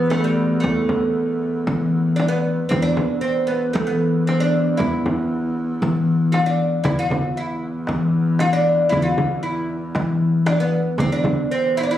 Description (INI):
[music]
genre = Arabic maqam ensemble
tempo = 116 BPM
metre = 4/4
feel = straight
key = E maqam bayati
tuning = A4 = 440 Hz
[part]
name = oud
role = melody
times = 0.0-12.0 s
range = G3 to F#4-50c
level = -21 LUFS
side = right 1 dB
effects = plate reverb
[part]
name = upright bass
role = bass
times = 0.0-11.2 s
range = E2 to E3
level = -20 LUFS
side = left 2 dB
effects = none
[part]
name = clear double bass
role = drone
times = 0.0-12.0 s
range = E2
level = -26 LUFS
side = equal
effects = none
[part]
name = frame drum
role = percussion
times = 0.1-11.4 s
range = none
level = -26 LUFS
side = left 2 dB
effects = none
[part]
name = darbuka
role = percussion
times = 6.8-11.8 s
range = none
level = -26 LUFS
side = right 1 dB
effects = none
[sound]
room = moderate studio ambience, RT60 0.5 s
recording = recorded on a phone in the room, studio reverb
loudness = -18 LUFS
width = side -11 dB against mid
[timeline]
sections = 0.0-12.0 A section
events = none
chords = none